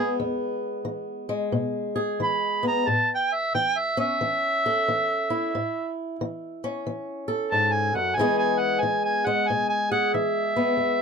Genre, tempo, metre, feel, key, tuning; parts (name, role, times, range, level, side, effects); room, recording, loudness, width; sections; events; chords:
acoustic country blues, solo or duo; 90 BPM; 4/4; swing 64% on 8ths; E major; A4 = 441 Hz
mellow harmonica; melody; 0.0-11.0 s; G#4 to B5; -23 LUFS; right 1 dB
fingerpicked swing-style acoustic guitar; accompaniment; 0.0-11.0 s; E2 to A4; -26 LUFS; left 1 dB
moderate booth ambience, RT60 0.2 s; dark, warm production; -22 LUFS; side -5 dB against mid
0.0-11.0 A section
0.0 E; 2.9 A; 8.2 E